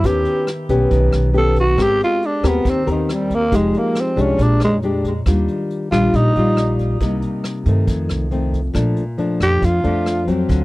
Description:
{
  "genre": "bossa nova",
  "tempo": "138 BPM",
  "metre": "4/4",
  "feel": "straight",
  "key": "unclear",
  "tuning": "A4 = 440 Hz",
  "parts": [
    { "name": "growling tenor saxophone", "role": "melody", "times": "0.0-6.8, 9.4-10.3 s", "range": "Eb3 to A4", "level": "-19 LUFS", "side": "right 1 dB", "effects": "tape echo" },
    { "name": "nylon-string guitar", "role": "accompaniment", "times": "0.0-10.6 s", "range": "F2 to Bb4", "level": "-19 LUFS", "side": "left 2 dB", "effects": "none" },
    { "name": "upright bass", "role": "bass", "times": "0.0-10.6 s", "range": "F1 to G2", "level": "-19 LUFS", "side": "right 1 dB", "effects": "none" },
    { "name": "vintage brush drum kit", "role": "drums", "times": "0.0-10.6 s", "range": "hi-hat, kick drum, rim click", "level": "-25 LUFS", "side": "equal", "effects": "none" }
  ],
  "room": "light reverb",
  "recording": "dry, close 1970s-style studio recording",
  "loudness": "-15 LUFS",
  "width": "side -19 dB against mid",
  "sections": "0.0-10.6 A section",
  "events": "tenor saxophone solo 0.0-10.6",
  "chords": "0.0 Ebaug7; 1.8 Abmaj9; 3.5 Fm9; 4.4 Bb6; 5.3 Ebmaj9; 7.0 Cm7; 7.9 F7; 8.8 Bbmaj7"
}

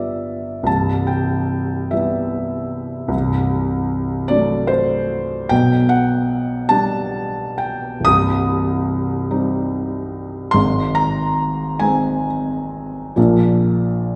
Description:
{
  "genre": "classical, romantic nocturne for solo piano",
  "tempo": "41-52 BPM (dotted quarters)",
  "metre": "6/8",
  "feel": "rubato",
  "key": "G major",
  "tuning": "A4 = 440 Hz",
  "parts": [
    { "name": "felt-muted upright piano", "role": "solo", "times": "0.0-14.2 s", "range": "C1 to Eb6", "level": "-19 LUFS", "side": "equal", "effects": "none" }
  ],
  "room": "wet recital hall reverb, RT60 1.6 s",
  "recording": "heard from further back in the room",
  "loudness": "-19 LUFS",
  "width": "mono",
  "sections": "0.0-14.2 A section",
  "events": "none",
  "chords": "0.0 G7; 0.7 Cmaj7; 3.1 D7/C; 5.5 G/B; 8.1 Cm; 10.5 Ab; 13.2 Bb"
}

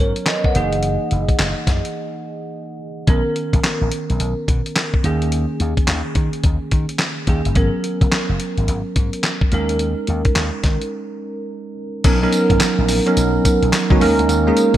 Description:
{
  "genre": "R&B, new jack swing",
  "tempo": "107 BPM",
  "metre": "4/4",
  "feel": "swing 63% on 16ths",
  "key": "unclear",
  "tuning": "A4 = 436 Hz",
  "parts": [
    { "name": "bell-like tine electric piano", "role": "accompaniment", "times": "0.0-14.8 s", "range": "D#3 to F#5", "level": "-20 LUFS", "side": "right 2 dB", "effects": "analog chorus" },
    { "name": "slap bass with an envelope filter", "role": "bass", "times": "0.0-14.8 s", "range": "F#1 to D#3", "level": "-20 LUFS", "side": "equal", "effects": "none" },
    { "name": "dusty soul sampler-style drum kit", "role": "drums", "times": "0.2-14.8 s", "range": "crash cymbal, handclaps, hi-hat, kick drum, snare drum, tambourine", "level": "-18 LUFS", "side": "equal", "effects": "none" }
  ],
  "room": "moderate plate reverb, RT60 2.0 s, digital ambience",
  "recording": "bright 1980s-style digital production",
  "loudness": "-16 LUFS",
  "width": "side -12 dB against mid",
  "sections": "0.0-12.0 A section; 12.0-14.8 B section",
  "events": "break 2.0-3.1, 10.9-12.0",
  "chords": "0.0 G#m11; 0.6 F#13; 3.1 Bmaj9; 5.0 D#7sus4; 7.6 G#m11; 9.5 D#7sus4; 12.0 Bmaj9; 14.0 D#7sus4"
}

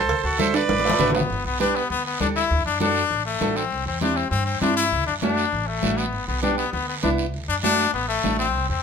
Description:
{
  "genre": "latin, cumbia",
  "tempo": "199 BPM",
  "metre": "4/4",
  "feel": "straight",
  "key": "unclear",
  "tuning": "A4 = 445 Hz",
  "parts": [
    { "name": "accordion", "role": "melody", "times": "0.0-1.1 s", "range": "F#4 to E5", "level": "-21 LUFS", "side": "right 4 dB", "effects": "none" },
    { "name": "upright bass", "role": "bass", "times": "0.0-8.8 s", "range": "G1 to G2", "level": "-29 LUFS", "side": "equal", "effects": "none" },
    { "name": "congas", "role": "percussion", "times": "0.1-8.7 s", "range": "none", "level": "-28 LUFS", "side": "left 3 dB", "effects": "none" },
    { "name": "cowbell and timbales", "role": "percussion", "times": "0.1-1.2 s", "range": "none", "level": "-28 LUFS", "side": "right 4 dB", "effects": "none" },
    { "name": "guiro", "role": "percussion", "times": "0.1-8.8 s", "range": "none", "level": "-33 LUFS", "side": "right 5 dB", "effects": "none" },
    { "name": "nylon-string guitar", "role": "accompaniment", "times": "0.4-8.5 s", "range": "A3 to B4", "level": "-26 LUFS", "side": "right 4 dB", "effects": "none" },
    { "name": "brilliant trumpet", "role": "second line", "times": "0.8-8.8 s", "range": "A3 to E4", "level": "-23 LUFS", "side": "left 6 dB", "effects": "none" }
  ],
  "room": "moderate studio reverb, RT60 0.8 s",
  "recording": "minimal, uncompressed stereo recording",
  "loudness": "-20 LUFS",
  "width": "side -6 dB against mid",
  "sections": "0.0-1.3 A section; 1.3-8.8 B section",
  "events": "drum fill 0.5-1.3; trumpet solo 1.3-8.8",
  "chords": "0.0 D7; 1.3 G; 2.5 D; 3.7 C; 4.9 D; 6.1 G; 7.3 D"
}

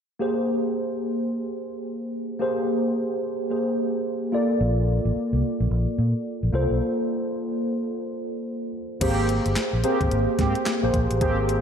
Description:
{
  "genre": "R&B, new jack swing",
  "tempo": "109 BPM",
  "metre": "4/4",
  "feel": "swing 62% on 16ths",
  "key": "unclear",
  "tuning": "A4 = 440 Hz",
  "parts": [
    { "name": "mellow tine electric piano", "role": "accompaniment", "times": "0.2-11.6 s", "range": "Bb3 to D5", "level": "-24 LUFS", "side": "equal", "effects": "analog chorus" },
    { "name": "vintage muted fingered electric bass", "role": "bass", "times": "4.6-11.6 s", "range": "G1 to Bb2", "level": "-24 LUFS", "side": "equal", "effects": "none" },
    { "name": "mellow synth brass", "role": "stabs", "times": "9.0-11.4 s", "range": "Bb3 to G4", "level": "-28 LUFS", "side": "right 2 dB", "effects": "chorus, tape echo" },
    { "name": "crisp 8-bit digital drum machine", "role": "drums", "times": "9.0-11.6 s", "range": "crash cymbal, handclaps, hi-hat, kick drum, snare drum", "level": "-28 LUFS", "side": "equal", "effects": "overdrive" }
  ],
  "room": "wet lush hall reverb, RT60 1.7 s",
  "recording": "dreamy mix soaked in reverb",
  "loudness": "-22 LUFS",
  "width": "side -7 dB against mid",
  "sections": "0.2-9.0 A section; 9.0-11.6 B section",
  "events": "break 6.8-9.0",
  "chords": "0.2 Abmaj9; 4.3 Bbmaj7; 9.0 Abmaj9"
}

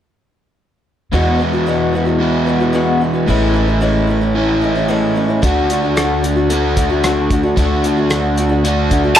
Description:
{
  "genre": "folk rock and heartland rock",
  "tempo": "112 BPM",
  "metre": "4/4",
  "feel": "straight",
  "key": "E mixolydian",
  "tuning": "A4 = 436 Hz",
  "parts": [
    { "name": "picked acoustic archtop guitar", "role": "accompaniment", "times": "1.1-9.2 s", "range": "E2 to F#4", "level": "-18 LUFS", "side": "left 3 dB", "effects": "none" },
    { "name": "crunchy overdriven guitar", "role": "riff", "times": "1.1-9.2 s", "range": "E2 to F#4", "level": "-16 LUFS", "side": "right 1 dB", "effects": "none" },
    { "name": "upright bass", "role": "bass", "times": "1.1-9.2 s", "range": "A1 to E2", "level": "-19 LUFS", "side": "right 1 dB", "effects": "none" },
    { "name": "cloth-damped thuddy drum kit", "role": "drums", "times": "5.4-9.0 s", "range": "hi-hat, kick drum, rim click", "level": "-20 LUFS", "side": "equal", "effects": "none" },
    { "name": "bright baby grand piano", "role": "melody", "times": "9.2 s", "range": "A5", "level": "-4 LUFS", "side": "equal", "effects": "none" }
  ],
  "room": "moderate studio reverb, RT60 0.7 s",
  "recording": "none",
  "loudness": "-13 LUFS",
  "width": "side -10 dB against mid",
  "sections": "1.1-9.2 A section",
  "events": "none",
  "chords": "1.1 Eadd9; 3.3 Amaj7; 5.4 D"
}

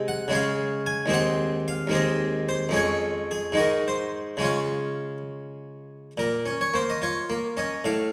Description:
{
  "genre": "classical, baroque-style suite movement for harpsichord",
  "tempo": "67-76 BPM (dotted quarters)",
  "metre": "6/8",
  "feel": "rubato",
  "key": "Db major",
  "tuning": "A4 = 440 Hz",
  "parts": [
    { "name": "harpsichord", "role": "solo", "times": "0.0-8.1 s", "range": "Eb2 to Ab5", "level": "-26 LUFS", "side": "equal", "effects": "none" }
  ],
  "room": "wet recital hall reverb, RT60 1.5 s",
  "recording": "recorded in a church or concert hall",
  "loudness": "-26 LUFS",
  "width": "mono",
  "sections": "0.0-6.2 A section; 6.2-8.1 A section",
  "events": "none",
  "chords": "0.3 Db; 1.1 Ab7/Eb; 2.8 Db/F; 3.6 Ab7; 4.4 Db; 6.2 Bbm"
}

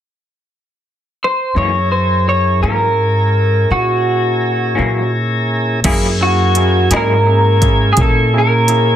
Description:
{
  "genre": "slow blues",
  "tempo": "56 BPM (dotted quarters)",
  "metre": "12/8",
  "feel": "straight",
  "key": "F# mixolydian",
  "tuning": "A4 = 436 Hz",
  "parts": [
    { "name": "electric guitar through a small old amp", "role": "melody", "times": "1.2-9.0 s", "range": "F#4 to C#5", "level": "-15 LUFS", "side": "equal", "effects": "analog chorus" },
    { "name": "electric guitar through a small old amp", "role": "accompaniment", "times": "1.5-7.1 s", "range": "F#2 to G#4", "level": "-20 LUFS", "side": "left 3 dB", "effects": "tremolo" },
    { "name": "tonewheel organ", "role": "sustained chords", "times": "1.6-9.0 s", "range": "A#3 to G#5", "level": "-21 LUFS", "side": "left 1 dB", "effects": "slow rotary speaker" },
    { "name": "upright bass", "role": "bass", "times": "1.6-9.0 s", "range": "F#2 to A#2", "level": "-15 LUFS", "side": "equal", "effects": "none" },
    { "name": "bright upright piano", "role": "accompaniment", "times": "5.8-9.0 s", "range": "A#3 to A#4", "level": "-22 LUFS", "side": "right 6 dB", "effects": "none" },
    { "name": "organic electronic drum kit", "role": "drums", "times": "5.8-8.8 s", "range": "crash cymbal, hi-hat, kick drum, snare drum", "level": "-17 LUFS", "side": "equal", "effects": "none" }
  ],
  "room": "moderate studio reverb, RT60 0.6 s",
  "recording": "dense, heavily limited modern master",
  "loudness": "-12 LUFS",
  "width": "side -10 dB against mid",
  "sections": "0.0-1.6 A section; 1.6-5.8 B section; 5.8-9.0 C section",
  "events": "none",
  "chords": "0.0 N.C.; 1.6 F#7"
}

